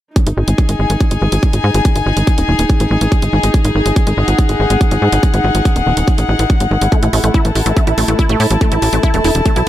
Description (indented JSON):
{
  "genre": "psychedelic trance",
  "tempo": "142 BPM",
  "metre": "4/4",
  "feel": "straight",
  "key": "unclear",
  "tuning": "A4 = 440 Hz",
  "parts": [
    { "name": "electronic hi-hat", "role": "drums", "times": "0.2-9.6 s", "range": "none", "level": "-24 LUFS", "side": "right 2 dB", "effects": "none" },
    { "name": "electronic kick drum", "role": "drums", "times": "0.2-9.5 s", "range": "none", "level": "-13 LUFS", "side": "equal", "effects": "none" },
    { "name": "rich chamber string section", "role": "texture", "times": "0.2-9.7 s", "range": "D#4 to A5", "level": "-18 LUFS", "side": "left 2 dB", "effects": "sidechain pumping" },
    { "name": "tight sequencer bass", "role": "bass", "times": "0.3-9.6 s", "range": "D#1 to A2", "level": "-14 LUFS", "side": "equal", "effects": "none" },
    { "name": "wide unison pluck", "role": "riff", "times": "6.9-9.6 s", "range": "A3 to E4", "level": "-18 LUFS", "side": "right 1 dB", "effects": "auto-pan, cassette tape, sidechain pumping, digital delay" }
  ],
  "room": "little or no reverb",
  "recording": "none",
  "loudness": "-11 LUFS",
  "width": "side -13 dB against mid",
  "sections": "0.2-9.7 A section",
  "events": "none",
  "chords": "0.2 G#5; 6.9 A5"
}